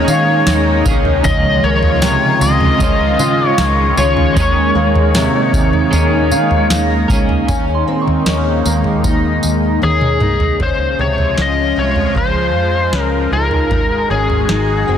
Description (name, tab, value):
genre	dream pop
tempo	77 BPM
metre	4/4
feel	straight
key	Db major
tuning	A4 = 440 Hz
part	overdriven slide guitar	melody	0.0-15.0 s	Ab4 to Eb5	-17 LUFS	left 3 dB	tape echo
part	twelve-string electric guitar	accompaniment	0.0-7.5 s	Db3 to C5	-21 LUFS	right 5 dB	tremolo, wide subtle chorus
part	lush unison pad	sustained chords	0.0-15.0 s	Eb3 to Gb4	-19 LUFS	right 1 dB	chorus, phaser
part	fingerpicked twelve-string acoustic guitar	arpeggios	0.0-15.0 s	C3 to F4	-19 LUFS	left 2 dB	wide subtle chorus, tape echo
part	vintage muted fingered electric bass	bass	0.0-15.0 s	Gb1 to Eb3	-18 LUFS	equal	none
part	booming analog drum machine	drums	0.1-14.7 s	kick drum, snare drum, tambourine, toms	-18 LUFS	right 1 dB	none
part	soft synth bell	texture	2.0-8.8 s	F5 to Db6	-27 LUFS	right 1 dB	chorus, phaser, tape echo
room	moderate lush hall reverb, RT60 2.5 s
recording	dense, heavily limited modern master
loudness	-12 LUFS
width	side -8 dB against mid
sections	0.0-7.5 A section; 7.5-10.6 B section; 10.6-15.0 C section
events	drum fill 9.8-10.6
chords	0.0 Eb7sus4; 1.2 Dbmaj7; 7.5 Eb7sus4; 10.6 Dbmaj7; 13.7 Ab7(no3)